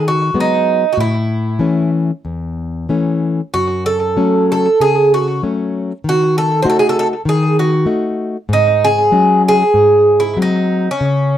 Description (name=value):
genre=fado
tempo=96 BPM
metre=4/4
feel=rubato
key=unclear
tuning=A4 = 441 Hz
part: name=Irish bouzouki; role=melody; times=0.0-11.4 s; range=C#4 to B#4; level=-13 LUFS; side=right 2 dB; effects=slapback echo
part: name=nylon-string guitar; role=accompaniment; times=0.0-11.4 s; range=E2 to F#4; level=-16 LUFS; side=left 2 dB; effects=none
room=light reverb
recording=dry, close 1970s-style studio recording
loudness=-12 LUFS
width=side -11 dB against mid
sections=0.0-11.4 A section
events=none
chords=0.0 G#m7; 1.0 A; 3.5 F#m; 6.0 D#dim; 8.5 G#7sus4; 9.7 G#7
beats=0.34 | 0.96 1.59 2.23 2.87 | 3.52 4.16 4.79 5.42 | 6.03 6.64 7.25 7.87 | 8.49 9.12 9.74 10.37 | 11.01